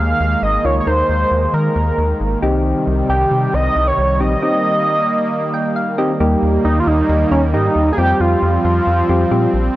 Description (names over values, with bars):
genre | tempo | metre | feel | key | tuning
synth-pop | 135 BPM | 4/4 | straight | unclear | A4 = 438 Hz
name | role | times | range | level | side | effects
octave-doubled lead | melody | 0.0-9.5 s | Db4 to F5 | -17 LUFS | right 1 dB | chorus
warm analog pad | sustained chords | 0.0-9.8 s | C3 to C4 | -21 LUFS | equal | chorus
rubbery square bass | bass | 0.0-9.7 s | Ab1 to Eb3 | -18 LUFS | equal | none
soft electric-piano-like synth keys | accompaniment | 0.6-9.6 s | G3 to G5 | -20 LUFS | left 1 dB | chorus
room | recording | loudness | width
light reverb | none | -13 LUFS | side -16 dB against mid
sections
0.0-6.2 A section; 6.2-9.8 B section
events
synth keys fill 5.3-6.2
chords
0.0 Ebsus4; 2.4 Cm; 6.2 Eb; 8.0 Fsus2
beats
0.42 | 0.87 1.31 1.76 2.20 | 2.65 3.09 3.54 3.98 | 4.42 4.87 5.31 5.76 | 6.20 6.65 7.09 7.54 | 7.98 8.42 8.87 9.31 | 9.76